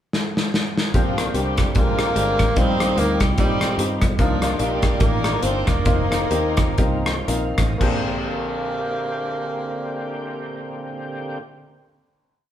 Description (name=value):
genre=uptempo gospel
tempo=110-148 BPM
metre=4/4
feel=swing 58% on 8ths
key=Bb major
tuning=A4 = 441 Hz
part: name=modern studio drum kit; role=drums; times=0.1-8.0 s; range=crash cymbal, hi-hat, kick drum, rim click, snare drum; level=-21 LUFS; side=equal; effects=none
part: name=breathy tenor saxophone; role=melody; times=0.9-11.4 s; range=F3 to C4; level=-27 LUFS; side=right 2 dB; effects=none
part: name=dark studio string section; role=melody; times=0.9-7.3 s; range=Bb3 to C5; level=-27 LUFS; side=left 3 dB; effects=none
part: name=clear upright piano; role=accompaniment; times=0.9-11.4 s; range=Bb1 to Bb4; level=-26 LUFS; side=left 2 dB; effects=none
part: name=mellow French horn section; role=sustained chords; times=0.9-11.4 s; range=Eb3 to D5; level=-37 LUFS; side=equal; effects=none
part: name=overdriven tonewheel organ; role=sustained chords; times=0.9-11.4 s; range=D3 to G5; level=-31 LUFS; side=right 1 dB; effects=slow rotary speaker, chorus vibrato
part: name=fingered electric bass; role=bass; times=0.9-11.4 s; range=E1 to Bb2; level=-26 LUFS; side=equal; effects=none
room=moderate large studio reverb, RT60 1.2 s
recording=band playing live in one room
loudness=-18 LUFS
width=side -10 dB against mid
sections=0.0-0.9 pickup bar; 0.9-7.8 breakdown; 7.8-12.2 final chord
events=drum fill 0.1-0.9; slowing down 4.2-7.8; tonewheel organ fill 6.8-7.8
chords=0.0 N.C.; 0.9 Bb69; 1.8 Bb13; 2.6 Eb69/Bb; 4.2 Cm11; 5.9 F7sus4; 7.8 Bb69